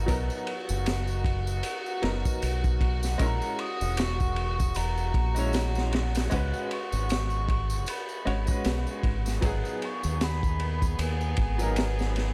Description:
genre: trip hop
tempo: 77 BPM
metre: 4/4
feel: swing 58% on 16ths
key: G# minor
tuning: A4 = 440 Hz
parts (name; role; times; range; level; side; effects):
- bright upright piano; accompaniment; 0.0-12.3 s; F#3 to C#5; -38 LUFS; equal; tremolo, tape echo
- rich chamber violin section; sustained chords; 0.0-12.3 s; B3 to G#4; -39 LUFS; equal; none
- deep dub fingered electric bass; bass; 0.0-12.3 s; E1 to D#2; -31 LUFS; equal; tube saturation
- crunchy breakbeat drum kit; drums; 0.1-12.3 s; kick drum, ride cymbal, snare drum; -33 LUFS; equal; none
- tambourine; percussion; 0.1-12.1 s; none; -46 LUFS; equal; none
- mellow wooden flute; melody; 3.2-12.1 s; F#5 to D#6; -39 LUFS; equal; tape echo
room: studio reverb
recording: none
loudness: -28 LUFS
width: mono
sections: 0.0-12.3 A section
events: none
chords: 0.1 Bmaj7; 3.2 A#m7b5; 6.3 C#7sus4; 9.4 G#m7

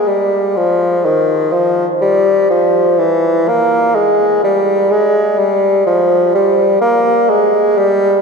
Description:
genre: classical, baroque-style fantasia for unaccompanied bassoon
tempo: 62 BPM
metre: 4/4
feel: rubato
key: unclear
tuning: A4 = 440 Hz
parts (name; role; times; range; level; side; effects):
- warm bassoon; solo; 0.0-8.2 s; Eb3 to Bb3; -10 LUFS; equal; none
room: wet cathedral reverb, RT60 4.8 s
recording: minimal, uncompressed stereo recording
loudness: -10 LUFS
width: side -4 dB against mid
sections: 0.0-8.2 A section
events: none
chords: none

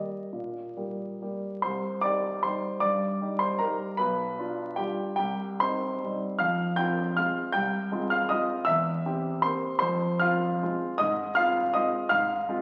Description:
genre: classical, piano waltz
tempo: 132-168 BPM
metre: 3/4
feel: rubato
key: C minor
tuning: A4 = 440 Hz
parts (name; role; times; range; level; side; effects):
- warm baby grand piano; solo; 0.0-12.6 s; B1 to G6; -28 LUFS; equal; none
room: wet recital hall reverb, RT60 1.5 s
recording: very old 78 rpm record, vinyl crackle, nothing above 10.6 kHz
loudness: -28 LUFS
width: mono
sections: 0.0-1.6 A section; 1.6-12.6 B section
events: none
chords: 0.0 Eb; 1.6 Cm; 4.0 G7/B; 5.2 Cm; 6.4 Fm; 8.7 C7/E; 9.8 Fm; 11.0 Fm7/Ab

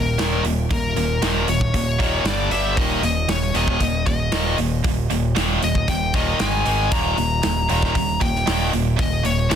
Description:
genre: heavy metal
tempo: 116 BPM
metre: 4/4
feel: straight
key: Eb major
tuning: A4 = 439 Hz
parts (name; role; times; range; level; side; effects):
- high-gain lead guitar; melody; 0.0-9.6 s; Bb4 to Bb5; -24 LUFS; left 4 dB; distortion, ping-pong delay
- distorted electric guitar; riff; 0.0-9.6 s; Eb2 to Ab3; -25 LUFS; left 10 dB; overdrive
- heavy high-gain guitar; riff; 0.0-9.6 s; Eb2 to Ab3; -24 LUFS; right 11 dB; distortion
- growling picked electric bass; bass; 0.0-9.6 s; Eb1 to Ab1; -24 LUFS; equal; overdrive
- modern studio drum kit; drums; 0.2-9.6 s; hi-hat, kick drum, snare drum; -25 LUFS; right 1 dB; none
room: small room ambience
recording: dense, heavily limited modern master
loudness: -18 LUFS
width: side -8 dB against mid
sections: 0.0-9.6 A section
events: none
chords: 0.0 Eb5; 2.3 G5; 2.8 Eb5; 6.4 Ab5; 6.9 Eb5

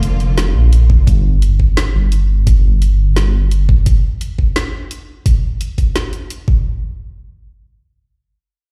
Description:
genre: half-time drum and bass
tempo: 172 BPM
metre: 4/4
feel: swing 56% on 16ths, half-time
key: unclear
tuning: A4 = 440 Hz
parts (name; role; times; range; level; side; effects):
- bright studio string section; sustained chords; 0.0-1.0 s; D3 to F4; -30 LUFS; equal; sidechain pumping
- dark detuned saw bass; bass; 0.0-3.9 s; F1 to Bb1; -14 LUFS; equal; tube saturation
- drum and bass drum kit; drums; 0.0-6.4 s; hi-hat, snare drum; -24 LUFS; equal; overdrive, small room ambience
- electronic kick drum; drums; 0.9-6.6 s; none; -15 LUFS; equal; overdrive, small room ambience
room: little or no reverb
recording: played on a big sound system in a bare room, large studio reverb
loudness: -14 LUFS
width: mono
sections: 0.0-6.7 A section; 6.7-8.7 B section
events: none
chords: 0.0 Bb; 1.1 N.C.

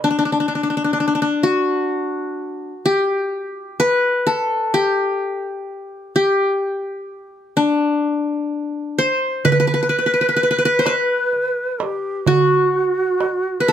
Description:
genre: Turkish makam ensemble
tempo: 127 BPM (eighths)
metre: 10/8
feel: straight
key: G makam rast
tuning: A4 = 442 Hz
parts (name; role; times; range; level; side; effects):
- qanun; melody; 0.0-13.7 s; D4 to C5; -18 LUFS; left 2 dB; none
- ney; second line; 9.5-13.7 s; F#4 to B4; -21 LUFS; right 2 dB; none
- darbuka; percussion; 9.5-13.7 s; none; -21 LUFS; right 6 dB; none
room: light reverb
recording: none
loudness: -17 LUFS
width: side -10 dB against mid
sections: 0.0-13.7 A section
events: none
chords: none

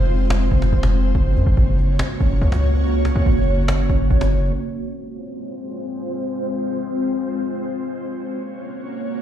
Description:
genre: hip hop, trap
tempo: 142 BPM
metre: 4/4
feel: half-time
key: F phrygian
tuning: A4 = 440 Hz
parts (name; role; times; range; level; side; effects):
- ethereal airy pad; sustained chords; 0.0-9.2 s; Ab3 to Db5; -23 LUFS; equal; ensemble chorus, built-in reverb, tremolo, low-pass filter
- hard-hitting 808-style bass; bass; 0.0-4.5 s; F1 to Gb2; -16 LUFS; equal; none
- cajon; drums; 0.1-4.5 s; none; -27 LUFS; equal; none
room: light reverb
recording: played on a big sound system in a bare room, large studio reverb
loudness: -17 LUFS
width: side -10 dB against mid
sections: 0.0-4.5 A section; 4.5-9.2 B section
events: filter sweep on ambient pad 4.5-9.2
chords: 0.0 Fm; 1.1 Gb; 4.5 Fm; 7.9 Gb

